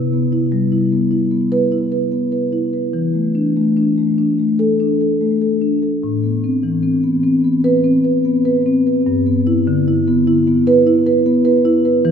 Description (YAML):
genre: classical, contemporary piece for solo marimba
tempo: 99 BPM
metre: 5/4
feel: straight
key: unclear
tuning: A4 = 441 Hz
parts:
  - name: marimba with soft mallets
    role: solo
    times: 0.0-12.1 s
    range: G2 to B4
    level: -14 LUFS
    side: equal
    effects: none
room: wet cathedral reverb, RT60 4.4 s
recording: recorded in a church or concert hall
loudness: -14 LUFS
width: side -7 dB against mid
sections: 0.0-12.1 A section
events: none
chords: 0.0 Cmaj7; 2.9 E7sus4; 6.0 Amadd9; 9.1 G6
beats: 0.52 1.11 1.71 2.32 | 2.94 3.57 4.19 4.81 5.42 | 6.04 6.64 7.24 7.85 8.46 | 9.06 9.67 10.27 10.86 11.45 | 12.05